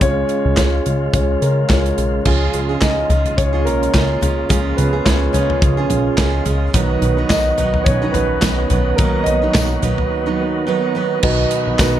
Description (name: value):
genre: piano-driven pop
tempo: 107 BPM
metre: 4/4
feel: swing 56% on 16ths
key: unclear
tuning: A4 = 440 Hz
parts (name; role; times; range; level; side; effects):
- dark baby grand piano; accompaniment; 0.0-12.0 s; B2 to Eb5; -20 LUFS; left 1 dB; none
- bright tonewheel organ; sustained chords; 0.0-12.0 s; Db3 to F#4; -25 LUFS; right 1 dB; fast rotary speaker
- plucky analog bass; bass; 0.0-12.0 s; Bb1 to Db3; -19 LUFS; equal; none
- modern studio drum kit; drums; 0.0-11.9 s; crash cymbal, handclaps, hi-hat, kick drum, snare drum, toms; -19 LUFS; equal; none
- picked steel-string acoustic guitar; riff; 2.3-12.0 s; B2 to B4; -22 LUFS; right 8 dB; none
- tambourine; percussion; 7.3-11.9 s; none; -31 LUFS; left 10 dB; none
room: light reverb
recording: dark, warm production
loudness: -14 LUFS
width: side -11 dB against mid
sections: 0.0-2.3 A section; 2.3-11.2 B section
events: grand piano solo 2.3-11.2; break 10.1-11.2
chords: 0.0 Db; 6.7 B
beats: | 0.01 0.57 1.14 1.70 | 2.26 2.82 3.38 3.94 | 4.50 5.06 5.62 6.18 | 6.75 7.31 7.87 8.43 | 8.99 9.55 10.11 10.67 | 11.23 11.79